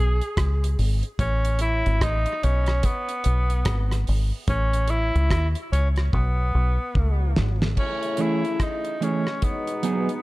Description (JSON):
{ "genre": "dub reggae", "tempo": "73 BPM", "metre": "4/4", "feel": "swing 61% on 16ths", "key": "unclear", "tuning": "A4 = 440 Hz", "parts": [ { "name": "breathy tenor saxophone", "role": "melody", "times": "0.0-10.2 s", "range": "B3 to G#4", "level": "-28 LUFS", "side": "equal", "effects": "tape echo" }, { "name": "deep dub fingered electric bass", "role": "bass", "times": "0.0-7.7 s", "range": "G#1 to D#2", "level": "-21 LUFS", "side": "equal", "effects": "none" }, { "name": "damped 70s drum kit", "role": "drums", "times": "0.2-10.2 s", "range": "crash cymbal, hi-hat, kick drum, rim click, snare drum", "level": "-26 LUFS", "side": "equal", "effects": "none" }, { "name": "muted trombone section", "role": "second line", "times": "7.8-10.2 s", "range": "B2 to E4", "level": "-30 LUFS", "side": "left 3 dB", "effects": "tape echo" }, { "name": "mellow electric guitar", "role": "accompaniment", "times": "8.2-10.1 s", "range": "E3 to G#4", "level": "-25 LUFS", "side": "right 3 dB", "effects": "tape echo" } ], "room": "small room ambience", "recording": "dark, warm production", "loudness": "-21 LUFS", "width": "side -20 dB against mid", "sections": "0.0-7.8 A section; 7.8-10.2 B section", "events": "break 0.0-7.8; drum fill 6.1-7.8", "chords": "0.0 G#madd11; 1.2 Aadd9(#11); 2.8 G#m; 4.5 A; 6.1 G#madd11; 7.8 Amaj7; 9.4 B6" }